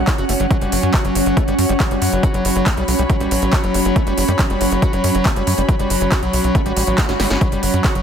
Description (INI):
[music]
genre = psychedelic trance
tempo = 139 BPM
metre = 4/4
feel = straight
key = unclear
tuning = A4 = 440 Hz
[part]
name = swarming drone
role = sustained chords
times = 0.0-8.0 s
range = F#3 to F#4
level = -23 LUFS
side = right 1 dB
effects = built-in reverb, sidechain pumping
[part]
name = overdriven acid bass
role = riff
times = 0.0-8.0 s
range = F#3 to F#4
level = -23 LUFS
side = equal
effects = auto-pan, sidechain pumping, dub echo
[part]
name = tight sequencer bass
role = bass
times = 0.0-8.0 s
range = F#1 to F#2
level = -21 LUFS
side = equal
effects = none
[part]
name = airy breathy pad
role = texture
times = 0.0-8.0 s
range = F#4 to B5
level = -23 LUFS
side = left 1 dB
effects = chorus, sidechain pumping
[part]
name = big-room dance drum kit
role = drums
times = 0.1-8.0 s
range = handclaps, hi-hat, rim click, snare drum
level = -23 LUFS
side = right 1 dB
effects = none
[part]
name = electronic kick drum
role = drums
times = 0.1-7.9 s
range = none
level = -17 LUFS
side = equal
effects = none
[part]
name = swell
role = sound effects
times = 6.7-7.4 s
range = none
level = -27 LUFS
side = right 4 dB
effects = none
[sound]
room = light reverb, digital ambience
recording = dense, heavily limited modern master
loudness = -14 LUFS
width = side -8 dB against mid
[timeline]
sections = 0.0-8.0 A section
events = swell 6.7-7.4; drum fill 7.0-7.4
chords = 0.0 F#5